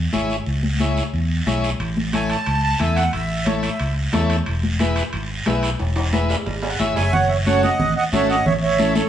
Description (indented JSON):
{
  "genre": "latin, cumbia",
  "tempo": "180 BPM",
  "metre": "4/4",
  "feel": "straight",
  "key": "unclear",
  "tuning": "A4 = 441 Hz",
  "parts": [
    { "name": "fingered electric bass", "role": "bass", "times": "0.0-9.0 s", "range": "E1 to E2", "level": "-22 LUFS", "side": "equal", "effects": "none" },
    { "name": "combo organ", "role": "accompaniment", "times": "0.1-9.0 s", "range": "C#4 to G#5", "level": "-25 LUFS", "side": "left 2 dB", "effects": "none" },
    { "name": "congas", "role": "percussion", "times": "0.1-9.1 s", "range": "none", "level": "-25 LUFS", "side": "left 2 dB", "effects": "none" },
    { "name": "guiro", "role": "percussion", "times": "0.1-9.1 s", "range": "none", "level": "-30 LUFS", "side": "right 2 dB", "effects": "none" },
    { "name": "timbales", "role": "percussion", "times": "1.8-7.0 s", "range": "none", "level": "-30 LUFS", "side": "right 2 dB", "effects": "none" },
    { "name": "accordion", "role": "melody", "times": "2.1-3.9, 7.0-9.1 s", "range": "A4 to A5", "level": "-20 LUFS", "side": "right 4 dB", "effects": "light tremolo tuning" }
  ],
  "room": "wet studio reverb, RT60 0.9 s",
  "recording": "heard from further back in the room, nothing above 10.8 kHz",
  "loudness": "-18 LUFS",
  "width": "side -10 dB against mid",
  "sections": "0.0-7.1 A section; 7.1-9.1 B section",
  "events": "drum fill 5.8-7.1; transistor combo organ fill 6.5-7.1",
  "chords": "0.0 C#m; 1.8 A; 4.5 E; 7.1 F#m; 8.5 A"
}